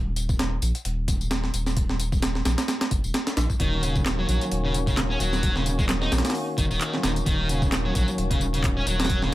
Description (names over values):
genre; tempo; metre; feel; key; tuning
breakbeat, breaks; 131 BPM; 4/4; swing 56% on 16ths; Eb minor; A4 = 439 Hz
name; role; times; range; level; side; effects
saturated sub bass; bass; 0.0-9.3 s; Eb1 to Bb1; -26 LUFS; equal; none
breakbeat sampler-style drum kit; drums; 0.2-9.3 s; hi-hat, kick drum, snare drum; -26 LUFS; equal; overdrive
electronic tambourine and handclaps; drums; 0.2-9.2 s; none; -34 LUFS; left 2 dB; none
tonewheel organ; sustained chords; 3.6-9.3 s; Eb3 to Gb4; -31 LUFS; left 1 dB; slow rotary speaker, sidechain pumping
thick fuzz guitar; riff; 3.6-9.3 s; Db3 to Eb4; -27 LUFS; equal; distortion, tape echo
room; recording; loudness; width
little or no reverb; none; -22 LUFS; side -16 dB against mid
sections
0.0-9.3 A section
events
none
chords
0.0 Ebm7